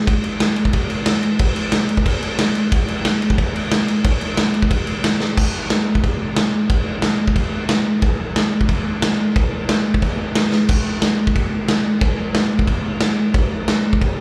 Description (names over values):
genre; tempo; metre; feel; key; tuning
punk; 181 BPM; 4/4; straight; none; none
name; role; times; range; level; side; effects
raw garage drum kit; drums; 0.1-14.1 s; crash cymbal, kick drum, snare drum; -18 LUFS; equal; none
room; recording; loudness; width
little or no reverb; live gig heard through the venue's PA, club reverb; -19 LUFS; mono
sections
0.0-5.4 A section; 5.4-10.7 B section; 10.7-14.2 C section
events
drum fill 5.2, 10.5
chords
none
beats
| 0.07 0.40 0.73 1.06 | 1.40 1.73 2.06 2.39 | 2.72 3.05 3.38 3.72 | 4.05 4.38 4.71 5.04 | 5.37 5.71 6.04 6.37 | 6.70 7.03 7.36 7.70 | 8.03 8.36 8.69 9.02 | 9.35 9.69 10.02 10.35 | 10.68 11.02 11.35 11.68 | 12.01 12.35 12.68 13.01 | 13.35 13.68 14.01